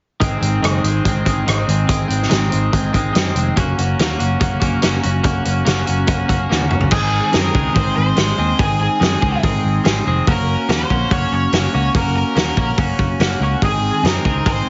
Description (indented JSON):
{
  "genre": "indie rock",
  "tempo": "143 BPM",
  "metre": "4/4",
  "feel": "straight",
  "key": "Ab mixolydian",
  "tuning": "A4 = 439 Hz",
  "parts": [
    { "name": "twelve-string electric guitar", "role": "riff", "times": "0.2-14.7 s", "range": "Eb3 to Ab4", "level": "-22 LUFS", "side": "equal", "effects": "none" },
    { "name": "picked electric bass", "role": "bass", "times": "0.2-14.6 s", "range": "F1 to Gb2", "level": "-22 LUFS", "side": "equal", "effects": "none" },
    { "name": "loose indie drum kit", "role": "drums", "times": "0.2-14.6 s", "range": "crash cymbal, hi-hat, kick drum, rim click, snare drum, toms", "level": "-22 LUFS", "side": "equal", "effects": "none" },
    { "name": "octave-fuzz lead guitar", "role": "melody", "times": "6.9-14.7 s", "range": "Ab4 to Db5", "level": "-24 LUFS", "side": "equal", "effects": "distortion, slapback echo" }
  ],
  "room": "light reverb",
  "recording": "heavily compressed radio sound, multiband compression, nothing above 7.6 kHz",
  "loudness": "-17 LUFS",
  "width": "mono",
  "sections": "0.2-6.9 A section; 6.9-14.7 B section",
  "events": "drum fill 6.5-6.9",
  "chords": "0.2 Ab; 3.6 Gb; 6.9 Ab; 10.3 Gb; 13.6 Ab"
}